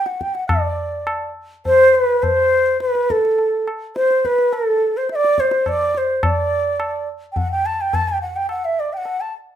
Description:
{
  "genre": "indian classical, Hindustani",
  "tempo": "105 BPM",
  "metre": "5/4",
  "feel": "straight",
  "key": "unclear",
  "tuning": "A4 = 440 Hz",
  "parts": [
    { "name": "breathy bansuri", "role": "melody", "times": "0.0-9.3 s", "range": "A4 to A5", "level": "-16 LUFS", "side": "equal", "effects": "plate reverb" },
    { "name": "tabla", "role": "percussion", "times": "0.1-9.3 s", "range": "none", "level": "-24 LUFS", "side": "left 1 dB", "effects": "none" }
  ],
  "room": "wet small room reverb, RT60 0.5 s",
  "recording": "rough home demo mix",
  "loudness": "-16 LUFS",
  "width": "side -10 dB against mid",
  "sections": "0.5-9.6 A section",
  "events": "speeding up 0.0-9.6",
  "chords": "none"
}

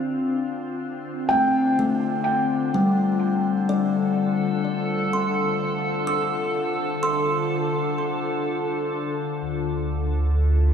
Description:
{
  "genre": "ambient",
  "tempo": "63 BPM",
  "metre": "4/4",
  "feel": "straight",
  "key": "D minor",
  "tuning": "A4 = 439 Hz",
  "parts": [
    { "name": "felt-muted upright piano", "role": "melody", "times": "0.0-1.7 s", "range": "F5 to G5", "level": "-26 LUFS", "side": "equal", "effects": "shimmer reverb, analog delay" },
    { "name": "glassy FM pad", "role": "sustained chords", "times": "0.0-10.7 s", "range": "D3 to C5", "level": "-24 LUFS", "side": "left 1 dB", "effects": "ensemble chorus, built-in reverb, shimmer reverb" },
    { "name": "kalimba", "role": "arpeggios", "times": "1.3-10.6 s", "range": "G3 to E6", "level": "-24 LUFS", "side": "left 2 dB", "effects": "analog delay" },
    { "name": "warm sub bass", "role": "bass", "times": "9.4-10.7 s", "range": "D2", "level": "-21 LUFS", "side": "right 1 dB", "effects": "tube saturation" }
  ],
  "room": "wet huge ambient reverb, RT60 7.5 s",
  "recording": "dreamy mix soaked in reverb, small room ambience",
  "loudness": "-21 LUFS",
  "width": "side -7 dB against mid",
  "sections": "0.0-9.4 A section; 9.4-10.7 B section",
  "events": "fade-in on ambient pad 0.0-9.4",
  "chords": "0.0 Dm7"
}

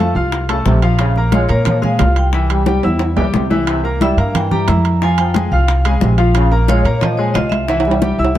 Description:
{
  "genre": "latin, salsa",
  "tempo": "179 BPM",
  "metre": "4/4",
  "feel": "straight",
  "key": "unclear",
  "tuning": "A4 = 440 Hz",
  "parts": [
    { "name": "vibraphone with medium hard mallets", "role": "melody", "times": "0.0-8.4 s", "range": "Db5 to Bb5", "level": "-22 LUFS", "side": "equal", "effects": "none" },
    { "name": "mellow trombone section", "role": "second line", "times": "0.0-8.2 s", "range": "C3 to Ab3", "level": "-23 LUFS", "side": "right 1 dB", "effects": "none" },
    { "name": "bright concert grand piano", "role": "accompaniment", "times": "0.0-8.4 s", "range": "E3 to F6", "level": "-19 LUFS", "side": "left 2 dB", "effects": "none" },
    { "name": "upright bass", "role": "bass", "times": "0.0-8.4 s", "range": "Bb1 to Bb2", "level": "-15 LUFS", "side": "equal", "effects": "none" },
    { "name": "timbales", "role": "percussion", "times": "0.0-8.4 s", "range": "none", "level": "-23 LUFS", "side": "right 7 dB", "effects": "none" },
    { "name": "bongos", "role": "percussion", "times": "0.3-8.4 s", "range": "none", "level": "-25 LUFS", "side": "left 5 dB", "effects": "none" },
    { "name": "congas", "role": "percussion", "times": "0.3-8.2 s", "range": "none", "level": "-22 LUFS", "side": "right 1 dB", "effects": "none" }
  ],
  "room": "light reverb",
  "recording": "dark, warm production",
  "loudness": "-12 LUFS",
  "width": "side -12 dB against mid",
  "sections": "0.0-8.4 A section",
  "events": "drum fill 2.7-3.7, 7.7-8.4",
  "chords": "0.0 F; 1.0 Bbm7; 2.3 C7; 5.0 Bbm7; 7.7 C"
}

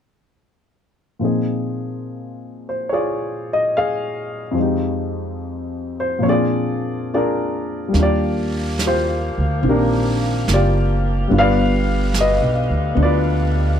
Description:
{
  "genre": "jazz ballad",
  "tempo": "72 BPM",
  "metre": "4/4",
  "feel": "swing 69% on 8ths",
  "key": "Eb major",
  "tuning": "A4 = 440 Hz",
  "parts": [
    { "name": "dark baby grand piano", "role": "accompaniment", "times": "1.2-13.8 s", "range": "F2 to F5", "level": "-19 LUFS", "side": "left 2 dB", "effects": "none" },
    { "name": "mellow saxophone section", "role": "sustained chords", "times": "7.9-13.8 s", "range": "D3 to F5", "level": "-28 LUFS", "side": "equal", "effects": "none" },
    { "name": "upright bass", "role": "bass", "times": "7.9-13.8 s", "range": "Gb1 to Eb2", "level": "-18 LUFS", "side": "right 1 dB", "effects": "none" },
    { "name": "jazz brush drum kit", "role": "drums", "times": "7.9-13.8 s", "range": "brushed snare drum, hi-hat, snare drum", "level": "-28 LUFS", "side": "right 4 dB", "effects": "none" }
  ],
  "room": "little or no reverb",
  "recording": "dark, warm production",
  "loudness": "-17 LUFS",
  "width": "side -8 dB against mid",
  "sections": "1.2-7.9 A section; 7.9-13.8 B section",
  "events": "none",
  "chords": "1.2 Bb7sus4; 4.6 Fm7; 6.2 Bb7; 7.9 Ebmaj9; 11.3 G7"
}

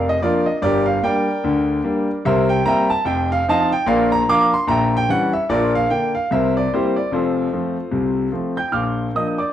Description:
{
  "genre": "jazz, stride piano",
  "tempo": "148 BPM",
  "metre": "4/4",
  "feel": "swing 60% on 8ths",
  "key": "Bb major",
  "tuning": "A4 = 440 Hz",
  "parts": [
    { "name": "clear concert grand piano", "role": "solo", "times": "0.0-9.5 s", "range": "F1 to G6", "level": "-16 LUFS", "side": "equal", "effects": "slapback echo" }
  ],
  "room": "light reverb",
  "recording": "dry, close 1970s-style studio recording",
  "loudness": "-16 LUFS",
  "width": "side -11 dB against mid",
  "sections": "0.0-8.7 A section",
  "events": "none",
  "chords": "0.0 Bb; 0.6 Gm; 2.3 C7; 3.1 F5; 3.9 Bb; 4.7 Bbdim7; 5.5 Bb; 6.3 C7; 7.1 F; 8.7 Bb"
}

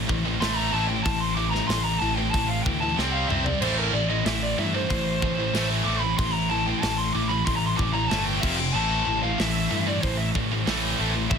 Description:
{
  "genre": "heavy metal",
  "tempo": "94 BPM",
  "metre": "4/4",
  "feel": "straight",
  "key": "A minor",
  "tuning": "A4 = 440 Hz",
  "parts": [
    { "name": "heavy high-gain guitar", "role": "riff", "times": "0.0-11.4 s", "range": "F2 to C4", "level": "-30 LUFS", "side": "left 14 dB", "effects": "distortion" },
    { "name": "heavy high-gain guitar", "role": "riff", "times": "0.0-11.4 s", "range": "F2 to C4", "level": "-29 LUFS", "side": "right 15 dB", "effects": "distortion" },
    { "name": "scooped high-gain guitar", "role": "riff", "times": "0.0-11.4 s", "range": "A2 to C5", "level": "-31 LUFS", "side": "right 1 dB", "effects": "distortion" },
    { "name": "picked electric bass", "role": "bass", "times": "0.0-11.4 s", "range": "F1 to G2", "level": "-29 LUFS", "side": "equal", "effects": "none" },
    { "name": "tight metal drum kit", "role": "drums", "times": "0.1-11.4 s", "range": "crash cymbal, hi-hat, kick drum, snare drum, toms", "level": "-30 LUFS", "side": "right 1 dB", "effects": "soft clipping on kick" },
    { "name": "bluesy overdriven lead guitar", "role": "melody", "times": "0.4-11.4 s", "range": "Bb4 to D6", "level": "-28 LUFS", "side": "left 1 dB", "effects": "distortion, tape echo" }
  ],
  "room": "light reverb",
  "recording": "dense, heavily limited modern master",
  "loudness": "-22 LUFS",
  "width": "side -6 dB against mid",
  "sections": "0.0-11.4 A section",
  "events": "lead electric guitar solo 0.0-11.4; drum fill 3.0-3.6",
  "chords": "0.0 Am; 3.0 C5; 3.6 Am; 8.4 F5; 8.8 Am"
}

